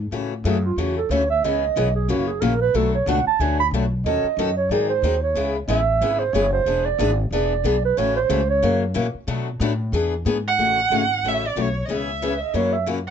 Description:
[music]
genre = acoustic string swing (jazz manouche)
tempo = 184 BPM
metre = 4/4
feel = swing 59% on 8ths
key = A major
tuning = A4 = 442 Hz
[part]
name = upright bass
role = bass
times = 0.0-13.1 s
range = E1 to B2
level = -24 LUFS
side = left 1 dB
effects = none
[part]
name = picked steel-string acoustic guitar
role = accompaniment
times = 0.1-13.0 s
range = B2 to A4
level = -24 LUFS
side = left 6 dB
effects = none
[part]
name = breathy clarinet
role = second line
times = 0.5-8.8, 12.2-12.9 s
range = F4 to B5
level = -21 LUFS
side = right 6 dB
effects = none
[part]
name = warm violin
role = melody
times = 10.5-13.1 s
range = C#5 to F#5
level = -21 LUFS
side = right 4 dB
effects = none
[sound]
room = moderate small room reverb, RT60 0.5 s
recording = nothing above 7.8 kHz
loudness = -19 LUFS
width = side -8 dB against mid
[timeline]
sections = 0.1-10.6 A section; 10.6-13.1 B section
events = clarinet solo 0.1-10.6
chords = 0.1 A6; 1.4 C#m7; 2.1 F#7; 2.7 Bm7; 4.1 D#m7b5; 4.7 G#7; 5.4 C#m7; 6.7 E7; 8.0 A6; 8.6 F#7; 9.3 Bm7; 9.9 E7; 10.6 A6; 11.9 C#m7; 12.5 F#7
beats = | 0.13 0.46 0.78 1.11 | 1.44 1.76 2.09 2.42 | 2.74 3.07 3.40 3.73 | 4.05 4.38 4.71 5.03 | 5.36 5.68 6.01 6.34 | 6.67 6.99 7.32 7.64 | 7.97 8.30 8.62 8.95 | 9.28 9.60 9.93 10.26 | 10.58 10.91 11.23 11.56 | 11.89 12.22 12.54 12.87

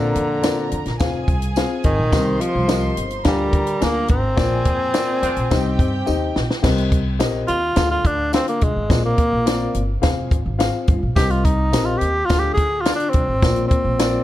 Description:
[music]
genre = uptempo 1960s-style soul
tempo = 106 BPM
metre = 4/4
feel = straight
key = C minor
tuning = A4 = 441 Hz
[part]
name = breathy tenor saxophone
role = melody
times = 0.0-14.2 s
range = D3 to Ab4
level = -21 LUFS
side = equal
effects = none
[part]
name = warm studio violin section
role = second line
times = 0.0-6.6 s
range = G4 to C6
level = -30 LUFS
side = right 2 dB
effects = none
[part]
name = dark upright piano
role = accompaniment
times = 0.0-14.2 s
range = Bb2 to Ab5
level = -25 LUFS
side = left 5 dB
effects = none
[part]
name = upright bass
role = bass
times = 0.0-14.2 s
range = F1 to D3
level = -23 LUFS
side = equal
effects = none
[part]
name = compact cocktail drum kit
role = drums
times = 0.2-14.1 s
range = crash cymbal, hi-hat, kick drum, snare drum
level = -20 LUFS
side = equal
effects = none
[part]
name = tambourine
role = percussion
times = 0.4-14.1 s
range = none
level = -37 LUFS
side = right 6 dB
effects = none
[part]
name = warm horn section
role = second line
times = 5.2-5.4 s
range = C4 to F4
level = -29 LUFS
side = right 1 dB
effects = none
[sound]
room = little or no reverb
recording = dark, warm production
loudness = -16 LUFS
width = side -14 dB against mid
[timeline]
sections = 0.0-6.6 A section; 6.6-14.2 B section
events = band accent 4.4-6.6; drum fill 6.1-6.6; tenor saxophone solo 6.6-14.2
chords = 0.0 Bbadd9; 1.0 Fm; 2.1 Cm7; 3.3 Ddim; 4.4 Bbadd9; 5.5 Cm7; 7.8 Ddim; 8.9 Bbadd9; 10.0 Fm; 11.2 Cm7; 12.3 Ddim; 13.4 Bbadd9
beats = 0.43 0.99 1.56 | 2.12 2.69 3.25 3.82 | 4.38 4.95 5.51 6.08 | 6.64 7.21 7.77 8.34 | 8.90 9.47 10.03 10.60 | 11.16 11.73 12.30 12.86 | 13.43 13.99

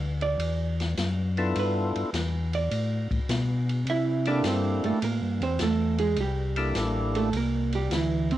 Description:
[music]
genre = soul jazz organ trio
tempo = 104 BPM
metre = 4/4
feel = swing 68% on 8ths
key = unclear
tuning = A4 = 440 Hz
[part]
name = vintage hollow-body jazz guitar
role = accompaniment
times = 0.0-8.4 s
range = C3 to E5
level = -28 LUFS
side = right 5 dB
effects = cassette tape
[part]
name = mellow tonewheel organ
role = bass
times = 0.0-8.4 s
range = A1 to C3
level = -28 LUFS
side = left 2 dB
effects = slow rotary speaker
[part]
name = open jazz drum kit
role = drums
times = 0.2-8.4 s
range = hi-hat, kick drum, ride cymbal, snare drum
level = -34 LUFS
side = left 1 dB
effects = cassette tape
[part]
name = percussive tonewheel organ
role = melody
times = 1.4-7.3 s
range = Bb3 to A4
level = -29 LUFS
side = left 2 dB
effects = overdrive, slow rotary speaker, cassette tape
[sound]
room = studio ambience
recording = home recording on cassette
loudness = -24 LUFS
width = side -13 dB against mid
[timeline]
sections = 0.0-8.4 A section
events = hollow-body jazz guitar solo 0.0-8.4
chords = 0.0 G13; 3.9 C13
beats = 0.39 0.97 | 1.55 2.13 2.71 3.29 | 3.87 4.45 5.03 5.61 | 6.18 6.76 7.34 7.92

